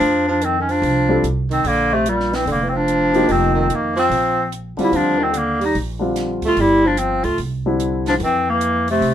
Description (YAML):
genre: jazz, small-group swing and bop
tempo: 146 BPM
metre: 4/4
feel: swing 65% on 8ths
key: F major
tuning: A4 = 440 Hz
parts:
  - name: clear clarinet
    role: melody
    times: 0.0-9.1 s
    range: G3 to F4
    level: -17 LUFS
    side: left 1 dB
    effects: none
  - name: breathy tenor saxophone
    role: second line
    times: 0.0-9.1 s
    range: Bb2 to A3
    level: -22 LUFS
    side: right 4 dB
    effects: none
  - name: upright bass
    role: bass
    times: 0.0-9.1 s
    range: F1 to F2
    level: -24 LUFS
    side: right 1 dB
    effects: none
  - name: compact cocktail drum kit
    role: drums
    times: 0.0-9.1 s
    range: hi-hat, kick drum, snare drum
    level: -34 LUFS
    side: right 3 dB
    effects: none
  - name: warm concert grand piano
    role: accompaniment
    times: 1.1-8.2 s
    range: D3 to A4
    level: -21 LUFS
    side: left 2 dB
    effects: none
room: light reverb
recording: minimal, uncompressed stereo recording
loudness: -16 LUFS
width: side -10 dB against mid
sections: 0.0-9.1 A section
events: none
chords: 0.0 F5; 1.7 F9sus4; 4.1 Bbadd9; 4.9 Ebmaj9; 6.6 G7sus4; 7.4 Cadd9; 8.2 Fmaj7